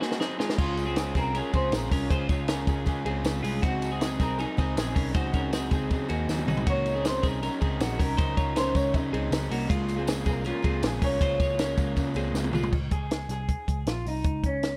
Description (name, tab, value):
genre	jangly indie pop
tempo	158 BPM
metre	4/4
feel	straight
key	Db major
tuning	A4 = 441 Hz
part	electric guitar through a small old amp	melody	0.0-14.8 s	Db4 to Eb5	-35 LUFS	equal	slapback echo
part	crunchy overdriven guitar	accompaniment	0.0-12.7 s	Db3 to Bb4	-36 LUFS	equal	none
part	twelve-string electric guitar	arpeggios	0.0-12.7 s	Gb3 to Db5	-35 LUFS	equal	slapback echo
part	compact cocktail drum kit	drums	0.0-14.7 s	crash cymbal, hi-hat, kick drum, ride cymbal, snare drum, toms	-31 LUFS	equal	none
part	vintage muted picked electric bass	bass	0.6-14.8 s	Bb1 to Db3	-34 LUFS	equal	none
part	tambourine	percussion	0.8-12.6 s	none	-50 LUFS	equal	none
room	light reverb, small room reverb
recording	none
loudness	-27 LUFS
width	mono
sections	0.6-12.7 A section; 12.7-14.8 B section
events	break 0.0-0.6; drum fill 0.0-0.6, 6.3-6.7, 12.3-12.7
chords	0.0 Ab7; 0.6 Db; 3.6 Ab7; 6.7 Ebm7; 9.7 Bbm7; 12.7 Db5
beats	0.20 | 0.59 0.97 1.35 1.73 | 2.11 2.49 2.87 3.25 | 3.63 4.01 4.39 4.77 | 5.15 5.53 5.91 6.29 | 6.67 7.04 7.42 7.80 | 8.18 8.56 8.94 9.32 | 9.70 10.07 10.45 10.83 | 11.21 11.59 11.97 12.35 | 12.73 13.11 13.49 13.87 | 14.24 14.62